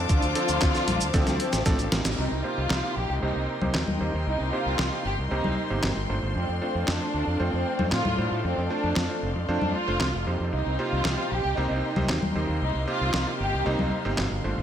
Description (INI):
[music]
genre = italo disco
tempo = 115 BPM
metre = 4/4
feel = straight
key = C dorian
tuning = A4 = 442 Hz
[part]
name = dark symphonic violin section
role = melody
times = 0.0-14.2 s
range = A3 to G4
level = -30 LUFS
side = equal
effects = tape echo
[part]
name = warm studio string section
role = sustained chords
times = 0.0-14.6 s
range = A4 to D6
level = -34 LUFS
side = left 3 dB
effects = none
[part]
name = bright electric grand piano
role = stabs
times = 0.0-14.6 s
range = C3 to C5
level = -32 LUFS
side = right 2 dB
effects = low-pass filter
[part]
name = fuzz fingered electric bass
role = bass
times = 0.0-14.6 s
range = F1 to A2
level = -29 LUFS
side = equal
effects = overdrive
[part]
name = dusty soul sampler-style drum kit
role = drums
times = 0.1-14.3 s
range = cabasa, congas, handclaps, hi-hat, snare drum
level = -29 LUFS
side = left 1 dB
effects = studio ambience
[part]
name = electronic kick drum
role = drums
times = 0.1-1.8 s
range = none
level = -24 LUFS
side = equal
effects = studio ambience
[sound]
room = light reverb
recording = none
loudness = -24 LUFS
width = side -9 dB against mid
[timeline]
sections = 0.0-2.2 A section; 2.2-14.6 B section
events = drum fill 1.1-2.2; band accent 2.1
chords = 0.0 Dm7; 2.2 Cm7; 6.4 F6; 10.5 Cm7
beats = | 0.09 0.62 1.14 1.66 | 2.18 2.70 3.23 3.75 | 4.27 4.79 5.31 5.83 | 6.36 6.88 7.40 7.92 | 8.44 8.96 9.49 10.01 | 10.53 11.05 11.57 12.09 | 12.62 13.14 13.66 14.18